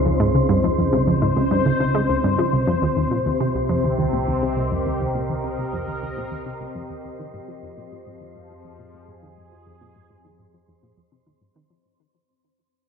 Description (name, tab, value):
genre	ambient, sequencer-driven space music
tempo	103 BPM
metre	4/4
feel	straight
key	unclear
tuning	A4 = 439 Hz
part	sweeping resonant pad	sustained chords	0.0-11.9 s	C3 to Eb5	-25 LUFS	equal	chorus
part	analog drone	bass	0.0-11.8 s	C2 to F2	-29 LUFS	equal	chorus
part	wind-like tuned noise texture	texture	0.0-11.9 s	C4 to C5	-27 LUFS	left 2 dB	built-in reverb
part	analog pluck	riff	0.1-11.8 s	C2 to Ab3	-23 LUFS	equal	chorus, ping-pong delay
room	moderate plate reverb, RT60 2.8 s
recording	cassette tape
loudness	-19 LUFS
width	side -6 dB against mid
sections	0.0-11.8 A section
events	fade-out 0.0-11.8; filter sweep on synth arpeggio sound 0.0-11.8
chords	0.0 Dbmaj7; 2.5 Cm7; 7.2 Fm7